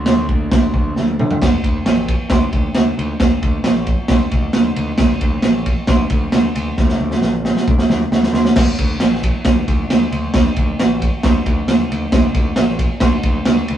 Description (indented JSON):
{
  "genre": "garage rock duo or trio",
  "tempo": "134 BPM",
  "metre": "4/4",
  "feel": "straight",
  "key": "unclear",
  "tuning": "A4 = 445 Hz",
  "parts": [
    { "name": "growling picked electric bass", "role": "bass", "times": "0.0-13.8 s", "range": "A1 to D3", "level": "-21 LUFS", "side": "left 1 dB", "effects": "overdrive" },
    { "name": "raw garage drum kit", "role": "drums", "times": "0.1-13.8 s", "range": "crash cymbal, kick drum, ride cymbal, snare drum, toms", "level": "-14 LUFS", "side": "right 1 dB", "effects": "none" }
  ],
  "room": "moderate studio ambience, RT60 0.5 s",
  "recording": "rough rehearsal-room recording, warm saturation",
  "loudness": "-14 LUFS",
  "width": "side -10 dB against mid",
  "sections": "0.0-1.4 A section; 1.4-8.6 B section; 8.6-13.8 C section",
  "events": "drum fill 1.0-1.4, 6.8-8.6",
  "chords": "none"
}